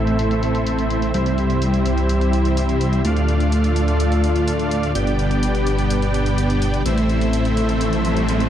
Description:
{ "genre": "EDM, festival progressive house", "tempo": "126 BPM", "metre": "4/4", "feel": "straight", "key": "A minor", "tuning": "A4 = 440 Hz", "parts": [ { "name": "lush unison pad", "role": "sustained chords", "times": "0.0-8.5 s", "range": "G3 to E5", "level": "-24 LUFS", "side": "left 1 dB", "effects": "chorus, phaser" }, { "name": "dense compressed supersaw", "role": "riff", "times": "0.0-8.5 s", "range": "G3 to G5", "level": "-21 LUFS", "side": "equal", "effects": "low-pass filter, dub echo" }, { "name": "wide detuned saw bass", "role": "bass", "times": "0.0-8.5 s", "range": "G1 to D2", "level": "-20 LUFS", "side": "equal", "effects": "chorus" }, { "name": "electronic hi-hat", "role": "drums", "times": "0.1-8.5 s", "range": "none", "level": "-35 LUFS", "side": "left 2 dB", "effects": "low-pass filter on hats, low-pass filter on cymbals" }, { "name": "riser", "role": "sound effects", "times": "7.5-8.5 s", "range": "none", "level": "-27 LUFS", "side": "equal", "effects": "none" } ], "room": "moderate concert hall reverb, RT60 1.6 s", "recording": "dark, warm production", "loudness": "-17 LUFS", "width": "side -10 dB against mid", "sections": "0.0-8.5 A section", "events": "filter sweep on supersaw synth 0.0-8.5; riser 7.5-8.5", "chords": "0.0 Am; 1.1 C; 3.0 Dm; 5.0 G; 6.9 Am" }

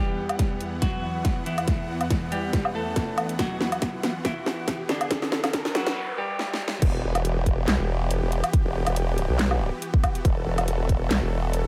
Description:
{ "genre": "heavy wobble dubstep", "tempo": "140 BPM", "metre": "4/4", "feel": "swing 54% on 16ths, half-time", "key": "E minor", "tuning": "A4 = 445 Hz", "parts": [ { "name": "clean electric guitar", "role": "melody", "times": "0.0-6.7 s", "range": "D3 to A4", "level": "-34 LUFS", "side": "equal", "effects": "vintage 12-bit sampler grit, delay" }, { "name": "supersaw chords", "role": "sustained chords", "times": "0.0-11.7 s", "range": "E2 to F#5", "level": "-35 LUFS", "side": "equal", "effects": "sidechain pumping" }, { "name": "riser and noise sweep", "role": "sound effects", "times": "0.0-6.8 s", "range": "none", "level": "-39 LUFS", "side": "equal", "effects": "none" }, { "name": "dubstep drum kit", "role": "drums", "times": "0.3-11.6 s", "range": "crash cymbal, handclaps, hi-hat, snare drum, woodblock", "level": "-30 LUFS", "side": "equal", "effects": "none" }, { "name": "electronic kick drum", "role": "drums", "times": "0.4-11.0 s", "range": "none", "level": "-26 LUFS", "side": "equal", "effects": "none" }, { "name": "formant-sweep wobble bass", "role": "bass", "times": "6.8-11.7 s", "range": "E1 to B1", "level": "-27 LUFS", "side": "equal", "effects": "chorus, overdrive" } ], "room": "light reverb", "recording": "high-pass filter", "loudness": "-25 LUFS", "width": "mono", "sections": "0.0-6.8 A section; 6.8-11.7 B section", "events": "build-up 0.0-6.8; drum fill 0.0-6.0, 6.4-6.8; filter sweep 0.0-6.8; noise sweep 5.1-6.8; break 6.0-6.8; drop 6.8-11.7", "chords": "0.0 Emadd9" }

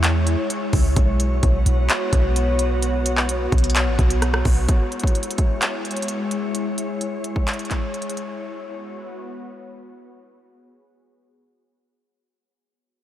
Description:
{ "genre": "hip hop, trap", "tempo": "129 BPM", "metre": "4/4", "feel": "half-time", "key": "unclear", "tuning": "A4 = 436 Hz", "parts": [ { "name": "glassy FM pad", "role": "sustained chords", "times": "0.0-12.1 s", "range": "G#3 to C#5", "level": "-25 LUFS", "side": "left 1 dB", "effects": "ensemble chorus, built-in reverb, low-pass filter" }, { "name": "clean 808-style bass", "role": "bass", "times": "0.0-4.7 s", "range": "A1 to E2", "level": "-20 LUFS", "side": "equal", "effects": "none" }, { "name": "trap drum kit", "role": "drums", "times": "0.0-8.3 s", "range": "handclaps, hi-hat, kick drum, rim click", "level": "-22 LUFS", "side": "equal", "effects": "none" } ], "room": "moderate huge ambient reverb, RT60 8.7 s", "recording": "dreamy mix soaked in reverb", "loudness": "-18 LUFS", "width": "side -12 dB against mid", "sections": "0.0-4.7 A section; 4.7-12.1 B section", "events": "fade-out 4.7-12.1; filter sweep on ambient pad 4.7-12.1", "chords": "0.0 C#m; 1.0 Bsus2; 4.7 C#m; 8.4 Bsus2" }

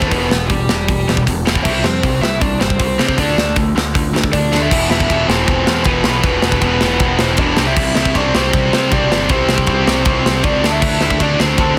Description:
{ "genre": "punk rock", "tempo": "157 BPM", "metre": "4/4", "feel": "straight", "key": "unclear", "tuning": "A4 = 440 Hz", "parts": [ { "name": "bluesy overdriven lead guitar", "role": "melody", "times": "0.0-11.8 s", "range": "G3 to E5", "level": "-22 LUFS", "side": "equal", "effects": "distortion" }, { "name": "distorted electric guitar", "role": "riff", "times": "0.0-11.8 s", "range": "E2 to D4", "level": "-22 LUFS", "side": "equal", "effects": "overdrive" }, { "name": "distorted electric guitar", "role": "riff", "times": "0.0-11.8 s", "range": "E2 to D4", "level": "-24 LUFS", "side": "equal", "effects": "distortion" }, { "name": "growling picked electric bass", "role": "bass", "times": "0.0-11.7 s", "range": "E1 to C3", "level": "-23 LUFS", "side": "equal", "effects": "overdrive" }, { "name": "tight metal drum kit", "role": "drums", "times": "0.0-11.7 s", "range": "crash cymbal, hi-hat, kick drum, ride cymbal, snare drum", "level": "-19 LUFS", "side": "equal", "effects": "none" } ], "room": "light reverb", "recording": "dense, heavily limited modern master", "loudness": "-15 LUFS", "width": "mono", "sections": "0.0-4.7 A section; 4.7-11.8 B section", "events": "drum fill 4.5", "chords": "0.1 Em; 1.6 C; 3.2 D5; 4.7 E5; 7.6 C; 10.6 D5" }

